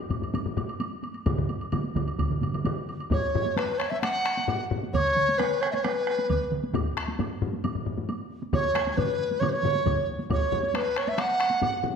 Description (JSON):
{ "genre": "japanese traditional, taiko drum ensemble", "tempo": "133 BPM", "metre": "4/4", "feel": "straight", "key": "unclear", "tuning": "A4 = 439 Hz", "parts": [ { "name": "taiko ensemble", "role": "percussion", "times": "0.1-11.7 s", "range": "none", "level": "-34 LUFS", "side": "right 1 dB", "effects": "none" }, { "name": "taiko ensemble", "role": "percussion", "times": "0.1-11.9 s", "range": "none", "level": "-31 LUFS", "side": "left 4 dB", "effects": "none" }, { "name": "taiko ensemble", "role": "percussion", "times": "0.1-10.4 s", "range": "none", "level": "-32 LUFS", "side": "equal", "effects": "none" }, { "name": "woodblock", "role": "percussion", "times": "0.1-11.7 s", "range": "none", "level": "-41 LUFS", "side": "right 3 dB", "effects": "none" }, { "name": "solo taiko drums", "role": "percussion", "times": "1.3-10.0 s", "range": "none", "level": "-31 LUFS", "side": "right 5 dB", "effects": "none" }, { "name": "mellow hollow large dizi", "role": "melody", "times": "3.1-11.8 s", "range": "B4 to F#5", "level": "-25 LUFS", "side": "equal", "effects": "none" } ], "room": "wet recital hall reverb, RT60 1.5 s", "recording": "none", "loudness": "-24 LUFS", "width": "side -6 dB against mid", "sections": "0.0-3.1 A section; 3.1-12.0 B section", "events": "speeding up 0.0-12.0", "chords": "none", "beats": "0.34 0.80 | 1.26 1.73 2.19 2.65 | 3.11 3.57 4.03 4.48 | 4.94 5.39 5.84 6.29 | 6.74 7.19 7.64 8.09 | 8.53 8.97 9.42 9.86 | 10.30 10.74 11.18 11.61" }